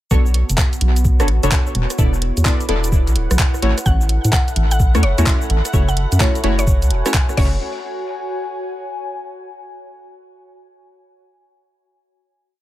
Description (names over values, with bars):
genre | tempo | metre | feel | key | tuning
UK garage, two-step garage | 128 BPM | 4/4 | swing 65% on 16ths | F# minor | A4 = 441 Hz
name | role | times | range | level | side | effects
punchy chord stab | stabs | 0.1-7.6 s | A3 to D5 | -23 LUFS | left 1 dB | chorus, phaser, tape echo
rubbery square bass | bass | 0.1-7.6 s | D1 to A2 | -16 LUFS | equal | none
electronic kick drum | drums | 0.1-7.5 s | none | -17 LUFS | equal | none
garage drum kit | drums | 0.1-7.5 s | cabasa, crash cymbal, handclaps, hi-hat, rim click | -23 LUFS | equal | overdrive, analog delay
warbly tape-like pad | texture | 0.4-9.4 s | B3 to B5 | -28 LUFS | equal | chorus, built-in reverb, sidechain pumping
mallet-like synth pluck | melody | 3.9-7.6 s | C#5 to F#5 | -27 LUFS | left 1 dB | chorus, tape echo
soft string machine | sustained chords | 4.2-7.4 s | F#5 | -34 LUFS | left 1 dB | ensemble chorus, sidechain pumping
room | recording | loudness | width
digital ambience | echo-heavy mix | -15 LUFS | side -15 dB against mid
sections
0.1-7.6 drop; 7.6-9.5 final note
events
drop 0.1-7.6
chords
0.1 Bm9; 1.8 E7sus4; 3.6 A6; 5.7 F#m7; 7.6 F#5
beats
| 0.11 0.58 1.05 1.51 | 1.98 2.45 2.92 3.39 | 3.86 4.33 4.80 5.26 | 5.73 6.20 6.67 7.14 | 7.61 8.08 8.55 9.02